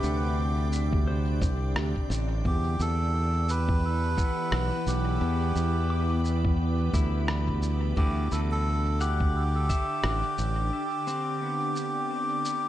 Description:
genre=ambient dub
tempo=87 BPM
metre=4/4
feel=swing 58% on 16ths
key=unclear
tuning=A4 = 441 Hz
part: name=melodica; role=melody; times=0.0-12.7 s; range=G4 to B4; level=-32 LUFS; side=equal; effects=tape echo
part: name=soft additive organ-like pad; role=sustained chords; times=0.0-12.7 s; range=C3 to D5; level=-34 LUFS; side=equal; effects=ensemble chorus, built-in reverb
part: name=pedal steel guitar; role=arpeggios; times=0.0-12.7 s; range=B3 to D6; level=-39 LUFS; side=left 3 dB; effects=tape echo
part: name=modern bright fingered electric bass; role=bass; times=0.0-10.7 s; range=A1 to E2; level=-26 LUFS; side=equal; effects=none
part: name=electronic shaker and rim click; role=drums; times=0.0-12.6 s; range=none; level=-36 LUFS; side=equal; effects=studio reverb, dub echo
part: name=electronic kick drum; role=drums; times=0.9-9.9 s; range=none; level=-27 LUFS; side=equal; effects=studio reverb
room=light reverb, digital ambience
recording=nothing above 10.9 kHz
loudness=-25 LUFS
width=side -13 dB against mid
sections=0.0-12.7 A section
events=break 10.7-12.7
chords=0.0 D7sus4; 2.5 Em7; 8.0 D7sus4

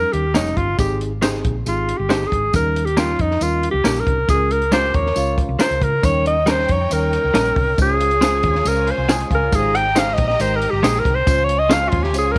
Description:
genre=uptempo 1960s-style soul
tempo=137 BPM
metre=4/4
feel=straight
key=Eb mixolydian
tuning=A4 = 440 Hz
part: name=warm alto saxophone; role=melody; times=0.0-12.4 s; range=Eb4 to G5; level=-21 LUFS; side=equal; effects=none
part: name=mellow tine electric piano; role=accompaniment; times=0.0-12.4 s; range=G3 to Eb5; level=-30 LUFS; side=equal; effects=none
part: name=hollow-body short-scale fingered electric bass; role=bass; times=0.0-12.4 s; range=F1 to Db3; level=-25 LUFS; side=equal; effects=none
part: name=compact cocktail drum kit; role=drums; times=0.1-12.4 s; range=hi-hat, kick drum, snare drum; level=-24 LUFS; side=equal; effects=none
part: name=direct-recorded clean electric guitar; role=stabs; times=0.3-11.8 s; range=G3 to Db5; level=-24 LUFS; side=equal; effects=tremolo
part: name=tambourine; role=percussion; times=0.3-12.2 s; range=none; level=-35 LUFS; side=equal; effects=none
part: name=electric guitar through a small old amp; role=riff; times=4.7-5.8, 8.9-9.7 s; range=F4 to C5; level=-31 LUFS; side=equal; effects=spring reverb
part: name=rich studio violin section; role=second line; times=6.0-12.4 s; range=Eb4 to Bb5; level=-33 LUFS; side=equal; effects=none
room=light reverb, studio reverb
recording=none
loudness=-18 LUFS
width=mono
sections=0.0-12.4 A section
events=alto saxophone solo 0.0-12.4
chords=0.0 Eb7; 0.8 Abmaj7; 2.5 Eb7; 4.3 Db6; 6.0 Eb7; 7.8 Dbmaj7; 9.5 Abmaj7; 11.3 Dbmaj7

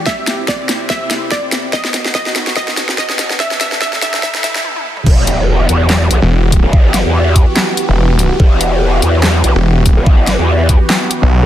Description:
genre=heavy wobble dubstep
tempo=144 BPM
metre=4/4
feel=swing 55% on 16ths, half-time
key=E minor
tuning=A4 = 440 Hz
part: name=wide unison pluck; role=melody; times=0.0-4.6 s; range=D5 to E5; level=-20 LUFS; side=right 1 dB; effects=vintage 12-bit sampler grit, tape echo
part: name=supersaw pad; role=sustained chords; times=0.0-11.5 s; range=G2 to A4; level=-20 LUFS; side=equal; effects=phaser, sidechain pumping
part: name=riser, swell and impact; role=sound effects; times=0.4-6.7 s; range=none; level=-26 LUFS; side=equal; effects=none
part: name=dubstep drum kit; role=drums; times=0.1-11.2 s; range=crash cymbal, handclaps, hi-hat, snare drum, toms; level=-16 LUFS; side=equal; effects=overdrive
part: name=electronic kick drum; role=drums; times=0.1-10.8 s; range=none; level=-10 LUFS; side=equal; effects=overdrive
part: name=growl bass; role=bass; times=5.1-11.5 s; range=E1 to E2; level=-12 LUFS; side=equal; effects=chorus, overdrive
part: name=snarling distorted saw bass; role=bass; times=6.2-11.4 s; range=E1 to B1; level=-11 LUFS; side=equal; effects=distortion, overdrive
room=light reverb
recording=dense, heavily limited modern master, high-pass filter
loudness=-11 LUFS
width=side -12 dB against mid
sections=0.0-5.1 A section; 5.1-11.5 B section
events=build-up 0.0-5.1; drum fill 0.0-4.6, 4.6-5.1; riser 0.4-4.6; swell 4.2-5.1; break 4.6-5.1; drop 5.1-11.5; impact 5.1-6.7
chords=0.1 C; 1.7 B; 3.4 Gadd9; 5.1 Emadd9

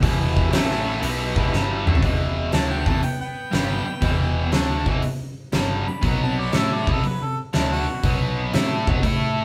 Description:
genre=blues rock power trio and southern rock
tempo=120 BPM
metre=4/4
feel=swing 68% on 8ths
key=E minor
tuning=A4 = 440 Hz
part: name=overdriven tonewheel organ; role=sustained chords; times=0.0-2.0 s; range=B3 to E5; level=-35 LUFS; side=equal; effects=slow rotary speaker, chorus vibrato
part: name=distorted electric guitar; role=riff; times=0.0-9.4 s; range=E2 to A4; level=-27 LUFS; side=equal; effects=overdrive
part: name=hollow-body short-scale fingered electric bass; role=bass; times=0.0-9.4 s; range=E1 to A2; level=-29 LUFS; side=equal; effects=none
part: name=huge arena drum kit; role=drums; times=0.0-9.2 s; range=hi-hat, kick drum, snare drum, toms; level=-25 LUFS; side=equal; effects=none
part: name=clear harmonica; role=melody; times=2.5-8.2 s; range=E4 to B5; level=-32 LUFS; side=equal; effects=overdrive
part: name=dark smooth lead guitar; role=second line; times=2.5-8.2 s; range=B2 to F#4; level=-35 LUFS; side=equal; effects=overdrive
room=moderate studio reverb, RT60 0.6 s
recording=band playing live in one room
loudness=-22 LUFS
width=mono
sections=0.0-2.0 A section; 2.0-9.4 B section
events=drum fill 1.5-2.0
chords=0.0 Em; 0.5 A5; 1.0 Em; 6.0 B5

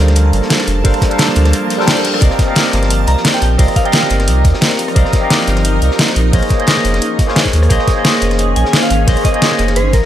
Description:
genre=liquid drum and bass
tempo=175 BPM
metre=4/4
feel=swing 54% on 16ths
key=unclear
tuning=A4 = 440 Hz
part: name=barky tine electric piano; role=accompaniment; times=0.0-9.8 s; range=G3 to G5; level=-16 LUFS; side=equal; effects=phaser, tape echo
part: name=shimmering ambient pad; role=sustained chords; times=0.0-10.1 s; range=Eb3 to A5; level=-22 LUFS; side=equal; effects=chorus, built-in reverb, phaser, sidechain pumping
part: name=warm sub bass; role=bass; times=0.0-10.0 s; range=F1 to Eb2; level=-13 LUFS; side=equal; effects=none
part: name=crunchy breakbeat drum kit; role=drums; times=0.1-10.1 s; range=hi-hat, snare drum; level=-25 LUFS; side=equal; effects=high-pass filter on hats, high-pass filter on snare, high-pass filter on room
part: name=pop drum kit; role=drums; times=0.1-10.0 s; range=hi-hat, rim click, snare drum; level=-15 LUFS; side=equal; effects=overdrive
part: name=electronic kick drum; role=drums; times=0.8-10.0 s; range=none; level=-14 LUFS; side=equal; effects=overdrive
part: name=reverse cymbal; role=sound effects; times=1.7-2.2 s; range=none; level=-22 LUFS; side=left 5 dB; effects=none
part: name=soft synth bell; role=melody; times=3.1-4.3, 8.6-10.1 s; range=Bb4 to Bb5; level=-21 LUFS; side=right 1 dB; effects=chorus, phaser, dub echo
room=light reverb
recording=none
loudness=-10 LUFS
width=side -11 dB against mid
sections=0.0-10.1 A section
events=reverse cymbal 1.7-2.2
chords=0.0 Gm11; 2.2 Cm11; 6.3 Bbm11

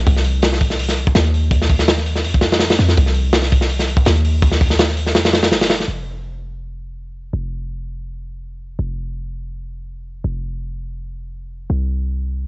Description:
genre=drum and bass, jungle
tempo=165 BPM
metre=4/4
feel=straight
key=unclear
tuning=A4 = 437 Hz
part: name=warm 808-style bass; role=bass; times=0.0-12.5 s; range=F1 to F2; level=-20 LUFS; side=equal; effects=tube saturation
part: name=crunchy breakbeat drum kit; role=drums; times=0.1-5.9 s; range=hi-hat, kick drum, snare drum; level=-15 LUFS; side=equal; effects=none
room=little or no reverb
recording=home recording on cassette, nothing above 7.9 kHz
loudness=-14 LUFS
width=side -26 dB against mid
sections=0.0-5.9 A section; 5.9-12.5 B section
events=drop 0.0-5.9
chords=none

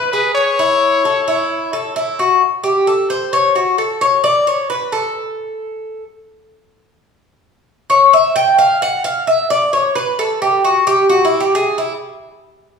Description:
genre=latin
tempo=131 BPM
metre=4/4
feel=straight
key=unclear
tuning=A4 = 440 Hz
part: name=bright trumpet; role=melody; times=0.0-1.9 s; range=B4 to C#5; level=-15 LUFS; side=left 4 dB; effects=tape echo
part: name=Cuban tres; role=arpeggios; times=0.0-11.9 s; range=E4 to G5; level=-13 LUFS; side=left 1 dB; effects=none
room=wet large studio reverb, RT60 1.3 s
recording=heard from further back in the room, studio reverb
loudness=-12 LUFS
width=side -5 dB against mid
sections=0.0-2.4 A section; 2.4-12.8 B section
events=Cuban tres solo 2.4-12.8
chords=0.0 E (rootless); 0.6 A; 2.4 N.C.

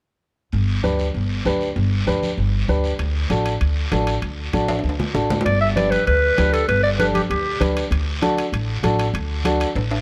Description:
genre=latin, cumbia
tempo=195 BPM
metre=4/4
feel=straight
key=G major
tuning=A4 = 439 Hz
part: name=upright bass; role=bass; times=0.5-10.0 s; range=G1 to D2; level=-24 LUFS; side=equal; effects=none
part: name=guiro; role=percussion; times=0.5-10.0 s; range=none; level=-35 LUFS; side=equal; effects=none
part: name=dark upright piano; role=accompaniment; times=0.8-9.7 s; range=D4 to B4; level=-26 LUFS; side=equal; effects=none
part: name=congas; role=percussion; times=0.8-9.6 s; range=none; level=-30 LUFS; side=equal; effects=none
part: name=timbales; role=percussion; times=3.0-10.0 s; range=none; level=-31 LUFS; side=equal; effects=none
part: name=growling clarinet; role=melody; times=5.5-7.7 s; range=G4 to E5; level=-22 LUFS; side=equal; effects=none
room=light reverb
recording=none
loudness=-20 LUFS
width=mono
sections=0.5-5.5 A section; 5.5-10.0 B section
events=drum fill 4.7-5.5, 9.8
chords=0.5 G; 3.0 D; 5.5 G; 7.9 D

